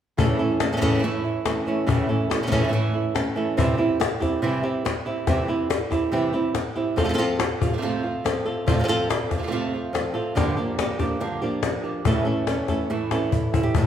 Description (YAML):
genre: flamenco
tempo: 142 BPM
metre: 4/4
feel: straight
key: unclear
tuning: A4 = 440 Hz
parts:
  - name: flamenco guitar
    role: melody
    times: 0.2-13.9 s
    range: G2 to A4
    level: -24 LUFS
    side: equal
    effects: none
  - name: flamenco guitar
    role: stabs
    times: 0.2-13.9 s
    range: F2 to G4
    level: -27 LUFS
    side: right 4 dB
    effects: none
  - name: cajon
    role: percussion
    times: 0.2-13.9 s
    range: none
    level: -26 LUFS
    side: left 3 dB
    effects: none
room: wet large studio reverb, RT60 1.4 s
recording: band playing live in one room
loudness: -21 LUFS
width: side -9 dB against mid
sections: 0.2-13.7 A section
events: drum fill 13.1-13.7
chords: 0.2 A; 3.6 C; 7.0 F; 10.4 Gm7; 12.1 A